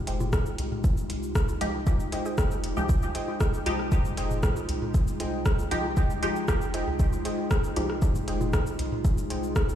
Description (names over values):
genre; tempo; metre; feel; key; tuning
dub techno; 117 BPM; 4/4; straight; F minor; A4 = 439 Hz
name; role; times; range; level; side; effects
warbly tape-like pad; sustained chords; 0.0-9.8 s; Ab3 to Ab4; -33 LUFS; equal; chorus, built-in reverb, sidechain pumping
soft dub sub bass; bass; 0.0-9.8 s; F1 to C2; -32 LUFS; equal; sidechain pumping
warbly dusty pluck; riff; 0.1-9.4 s; Ab4 to G5; -39 LUFS; right 1 dB; chorus, sidechain pumping, dub echo
deep house drum kit; drums; 0.1-9.8 s; hi-hat, rim click, shaker; -35 LUFS; left 1 dB; overdrive, dub echo
electronic toms and bongos; percussion; 0.2-9.8 s; none; -39 LUFS; left 1 dB; none
electronic kick drum; drums; 0.3-9.7 s; none; -24 LUFS; equal; overdrive
filtered dub chord stab; stabs; 1.6-7.9 s; F3 to G4; -34 LUFS; left 1 dB; chorus, phaser, sidechain pumping, dub echo
room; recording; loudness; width
little or no reverb; played on a big sound system in a bare room, stone room reverb; -24 LUFS; side -10 dB against mid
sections
0.0-9.8 A section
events
none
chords
0.0 Fm9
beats
0.33 | 0.84 1.35 1.87 2.38 | 2.89 3.40 3.92 4.43 | 4.94 5.46 5.97 6.48 | 7.00 7.51 8.02 8.53 | 9.05 9.56